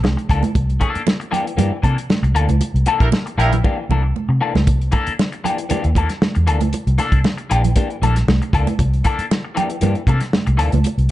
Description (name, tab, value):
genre	funk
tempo	116 BPM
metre	4/4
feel	straight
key	C mixolydian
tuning	A4 = 441 Hz
part	electric guitar at the edge of break-up	accompaniment	0.0-10.8 s	E3 to A4	-22 LUFS	left 4 dB	wah
part	vintage muted fingered electric bass	bass	0.0-11.1 s	Bb1 to C3	-17 LUFS	equal	none
part	warm soul drum kit	drums	0.0-11.1 s	hi-hat, kick drum, snare drum	-19 LUFS	equal	none
part	congas	percussion	0.0-11.0 s	none	-25 LUFS	right 6 dB	none
part	clear horn section	second line	3.0-3.5 s	G3 to Bb4	-23 LUFS	right 3 dB	none
room	light reverb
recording	dark, warm production, nothing above 10.6 kHz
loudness	-15 LUFS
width	side -15 dB against mid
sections	0.0-11.1 A section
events	band accent 2.6-4.7; drum fill 3.6-4.7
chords	0.0 C9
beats	0.04 | 0.55 1.07 1.58 2.10 | 2.61 3.12 3.64 4.15 | 4.67 5.18 5.70 6.21 | 6.73 7.24 7.76 8.27 | 8.79 9.30 9.82 10.33 | 10.85